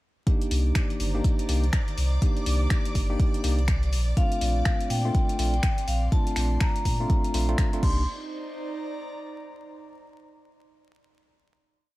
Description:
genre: deep house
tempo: 123 BPM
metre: 4/4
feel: swing 60% on 16ths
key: C dorian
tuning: A4 = 438 Hz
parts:
  - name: tine electric piano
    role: stabs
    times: 0.3-8.0 s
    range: A3 to G4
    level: -32 LUFS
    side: equal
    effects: medium stereo tremolo, sidechain pumping, dub echo
  - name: deep house drum kit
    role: drums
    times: 0.3-7.9 s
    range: crash cymbal, finger snaps, hi-hat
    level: -35 LUFS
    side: left 1 dB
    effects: none
  - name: electronic kick drum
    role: drums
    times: 0.3-7.9 s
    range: none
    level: -24 LUFS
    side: equal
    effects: none
  - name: airy breathy pad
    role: texture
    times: 0.7-10.0 s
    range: Eb3 to C6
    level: -39 LUFS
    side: right 1 dB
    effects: chorus, sidechain pumping
  - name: string machine, violins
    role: texture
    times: 0.3-8.1 s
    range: D5 to D6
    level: -42 LUFS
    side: right 1 dB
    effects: ensemble chorus, sidechain pumping
  - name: warm sub bass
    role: bass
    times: 0.5-8.1 s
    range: G1 to Bb2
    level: -24 LUFS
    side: equal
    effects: sidechain pumping
  - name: vibraphone with medium hard mallets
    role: melody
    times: 4.2-8.1 s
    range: F5 to C6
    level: -32 LUFS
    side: left 2 dB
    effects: dub echo
room: little or no reverb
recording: vinyl crackle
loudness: -22 LUFS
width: side -18 dB against mid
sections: 0.3-8.1 drop; 8.1-10.0 final chord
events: drop 0.3-8.1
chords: 0.3 Cm9; 3.9 Bbmaj9; 7.8 Cm9

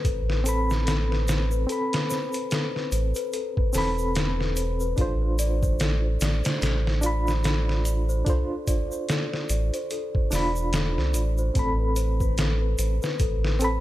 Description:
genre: trip hop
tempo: 73 BPM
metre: 4/4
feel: swing 58% on 16ths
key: A minor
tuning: A4 = 440 Hz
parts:
  - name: reed electric piano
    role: accompaniment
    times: 0.0-13.8 s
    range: C4 to B5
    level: -30 LUFS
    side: right 1 dB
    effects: overdrive, fast tremolo, tape echo
  - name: celesta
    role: arpeggios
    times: 0.0-13.8 s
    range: A4 to D5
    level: -32 LUFS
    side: left 4 dB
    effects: tape echo
  - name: round analog bass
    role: bass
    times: 0.0-13.8 s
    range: E1 to C2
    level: -25 LUFS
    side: equal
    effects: none
  - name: trip hop sampler-style drum kit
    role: drums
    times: 0.0-13.8 s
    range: hi-hat, kick drum, snare drum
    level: -27 LUFS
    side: equal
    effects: studio reverb
  - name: egg shaker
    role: percussion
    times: 0.0-13.8 s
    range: none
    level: -39 LUFS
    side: equal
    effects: none
room: little or no reverb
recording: none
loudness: -22 LUFS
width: side -15 dB against mid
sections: 0.0-13.8 A section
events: none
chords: 0.0 Amadd9; 5.0 Dm7/A; 11.6 Amadd9

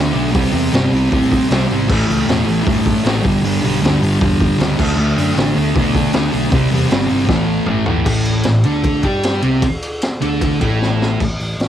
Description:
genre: garage rock duo or trio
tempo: 155 BPM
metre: 4/4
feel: straight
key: unclear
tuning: A4 = 440 Hz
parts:
  - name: thick fuzz guitar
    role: riff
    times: 0.0-11.2 s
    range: G2 to G4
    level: -15 LUFS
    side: equal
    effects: distortion
  - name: picked electric bass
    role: bass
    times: 0.0-11.7 s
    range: E1 to B2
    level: -21 LUFS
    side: equal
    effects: none
  - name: raw garage drum kit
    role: drums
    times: 0.2-11.7 s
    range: crash cymbal, hi-hat, kick drum, ride cymbal, snare drum, toms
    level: -19 LUFS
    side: equal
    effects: none
room: little or no reverb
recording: home recording on cassette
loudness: -13 LUFS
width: side -10 dB against mid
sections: 0.0-8.1 A section; 8.1-11.2 B section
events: drum fill 7.3-8.1, 10.8-11.2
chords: 0.4 C5; 1.9 A5; 3.2 G5; 4.8 D5; 6.5 C; 7.3 A5; 8.1 Amadd11

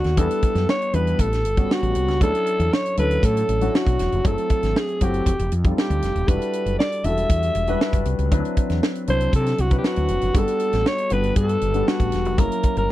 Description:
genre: polished 1980s jazz-funk pop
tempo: 118 BPM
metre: 4/4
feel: straight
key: unclear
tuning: A4 = 440 Hz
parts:
  - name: growling alto saxophone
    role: melody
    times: 0.0-12.9 s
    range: F#4 to E5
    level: -23 LUFS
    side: equal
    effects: slapback echo
  - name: dark grand piano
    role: accompaniment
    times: 0.0-12.9 s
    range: F#3 to D5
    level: -26 LUFS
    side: left 3 dB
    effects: wide subtle chorus
  - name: woody fretless electric bass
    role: bass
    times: 0.0-12.9 s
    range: Eb1 to C3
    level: -23 LUFS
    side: equal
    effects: none
  - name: tight funk drum kit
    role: drums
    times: 0.0-12.9 s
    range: hi-hat, kick drum, snare drum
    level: -22 LUFS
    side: equal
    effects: none
room: little or no reverb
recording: dry, close 1970s-style studio recording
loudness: -18 LUFS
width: side -15 dB against mid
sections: 0.0-12.9 A section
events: none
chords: 0.2 Em7; 1.2 A13; 2.2 Dmaj9; 4.2 F#m7b5; 5.3 F9; 6.3 Em11; 8.3 D13; 10.4 Gmaj9; 12.4 F#7

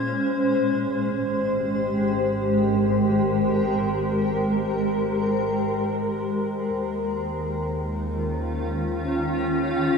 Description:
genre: ambient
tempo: free time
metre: none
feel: none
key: Ab major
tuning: A4 = 437 Hz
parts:
  - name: granular cloud pad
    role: sustained chords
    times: 0.0-10.0 s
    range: Eb3 to C5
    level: -22 LUFS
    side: equal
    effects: built-in reverb, shimmer reverb
  - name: warm studio double bass section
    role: bass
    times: 0.1-10.0 s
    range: Ab1 to Eb2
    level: -31 LUFS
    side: equal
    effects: none
room: wet cathedral reverb, RT60 7.7 s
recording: in a vast, echoing space, cassette tape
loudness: -22 LUFS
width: side -5 dB against mid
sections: 0.1-10.0 A section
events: none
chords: 0.1 Abmaj9; 6.7 Eb9sus4

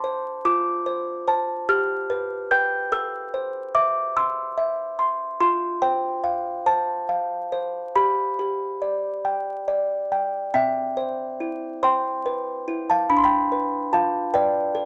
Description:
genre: classical, lullaby for music box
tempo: 48 BPM (dotted quarters)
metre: 6/8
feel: straight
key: C major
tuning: A4 = 440 Hz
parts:
  - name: music box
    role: solo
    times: 0.0-14.9 s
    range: C4 to G6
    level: -24 LUFS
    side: equal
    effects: none
room: moderate club reverb, RT60 0.8 s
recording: vinyl crackle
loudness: -24 LUFS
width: mono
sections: 0.0-10.5 A section; 10.5-14.9 B section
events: none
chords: 0.5 Dm7/F; 1.7 G7; 2.9 Am; 5.4 F; 8.0 G; 10.5 C; 13.1 G7/D

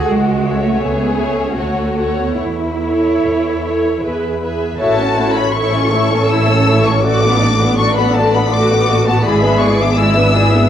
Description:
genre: classical, slow romantic movement for string orchestra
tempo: 69-85 BPM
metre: 3/4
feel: rubato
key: A major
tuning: A4 = 441 Hz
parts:
  - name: warm symphonic violin section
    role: melody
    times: 0.0-10.7 s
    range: E5 to E6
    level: -20 LUFS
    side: left 4 dB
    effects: none
  - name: warm symphonic violin section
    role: second line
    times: 0.0-10.7 s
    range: E4 to F#5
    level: -20 LUFS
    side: left 3 dB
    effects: none
  - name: rich studio viola section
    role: accompaniment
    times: 0.0-10.7 s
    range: G#3 to C#5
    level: -18 LUFS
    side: equal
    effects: none
  - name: clear symphonic cello section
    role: bass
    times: 0.0-10.7 s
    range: G#3 to A4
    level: -20 LUFS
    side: right 2 dB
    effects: none
  - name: clear symphonic double bass section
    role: bass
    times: 0.1-10.7 s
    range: G#1 to E2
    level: -18 LUFS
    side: right 2 dB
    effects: none
room: wet recital hall reverb, RT60 1.6 s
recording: worn, warbling old tape, cassette tape, warbly pitch drift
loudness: -12 LUFS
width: side -10 dB against mid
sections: 0.0-4.8 A section; 4.8-10.7 B section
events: none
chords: 0.1 A/C#; 1.6 Dmaj7; 2.4 A/E; 4.0 E; 4.8 A; 7.0 Bm7/A; 9.3 E7/G#

